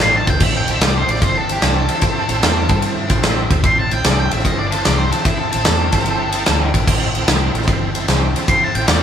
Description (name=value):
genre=blues rock power trio and southern rock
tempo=149 BPM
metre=4/4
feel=swing 67% on 8ths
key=A minor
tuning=A4 = 442 Hz
part: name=octave-fuzz lead guitar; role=melody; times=0.0-9.0 s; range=E4 to C6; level=-20 LUFS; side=equal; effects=distortion
part: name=tonewheel organ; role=sustained chords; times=0.0-9.0 s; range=C4 to D5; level=-25 LUFS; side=right 5 dB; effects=slow rotary speaker, overdrive, chorus vibrato
part: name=vintage muted fingered electric bass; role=bass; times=0.0-9.0 s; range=G1 to G2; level=-20 LUFS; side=equal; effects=none
part: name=big rock drum kit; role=drums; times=0.0-9.0 s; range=crash cymbal, kick drum, ride cymbal, snare drum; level=-16 LUFS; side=equal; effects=none
room=moderate stone room reverb, RT60 1.0 s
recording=band playing live in one room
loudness=-14 LUFS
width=side -8 dB against mid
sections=0.0-9.0 A section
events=lead electric guitar solo 0.0-9.0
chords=0.0 Am